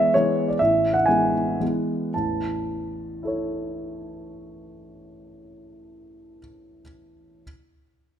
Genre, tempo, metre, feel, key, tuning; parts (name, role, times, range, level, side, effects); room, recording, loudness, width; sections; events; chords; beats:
classical, piano waltz; 101-140 BPM; 3/4; rubato; A major; A4 = 440 Hz
warm baby grand piano; solo; 0.0-7.4 s; A1 to A5; -21 LUFS; equal
moderate recital hall reverb, RT60 1.7 s; minimal, uncompressed stereo recording; -21 LUFS; side -9 dB against mid
0.0-2.2 A section; 2.2-5.3 B section
slowing down 0.0-2.2
0.0 E/A; 2.2 A
0.15 | 0.60 1.07 1.60 | 2.17 2.68 3.23 | 3.75 4.27 4.81